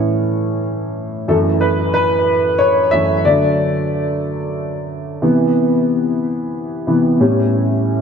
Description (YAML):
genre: pop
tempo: 61 BPM (dotted quarters)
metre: 6/8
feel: straight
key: unclear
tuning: A4 = 440 Hz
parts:
  - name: warm grand piano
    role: solo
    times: 0.0-8.0 s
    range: F#2 to E5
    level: -14 LUFS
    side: equal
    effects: lush chorus, ping-pong delay
room: wet lush hall reverb, RT60 2.6 s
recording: dreamy mix soaked in reverb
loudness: -14 LUFS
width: side -6 dB against mid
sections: 0.0-1.3 A section; 1.3-8.0 B section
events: grand piano solo 0.0-1.3, 1.3-8.0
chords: 0.0 A; 1.3 F#m7; 3.3 D; 5.2 Cmaj7; 7.2 A7